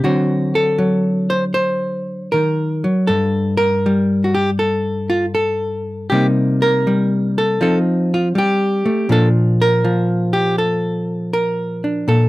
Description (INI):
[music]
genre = solo jazz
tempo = 80 BPM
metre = 4/4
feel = swing 67% on 8ths, rubato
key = Bb major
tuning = A4 = 442 Hz
[part]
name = hollow-body jazz guitar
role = solo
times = 0.0-12.3 s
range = G2 to C5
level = -15 LUFS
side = equal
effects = none
[sound]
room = moderate club reverb, RT60 0.5 s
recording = close, detailed microphones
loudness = -15 LUFS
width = side -18 dB against mid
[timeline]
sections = 0.0-12.3 A section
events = none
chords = 0.0 D7; 3.1 N.C.; 6.1 Cm7; 7.6 F7; 9.1 Bbmaj7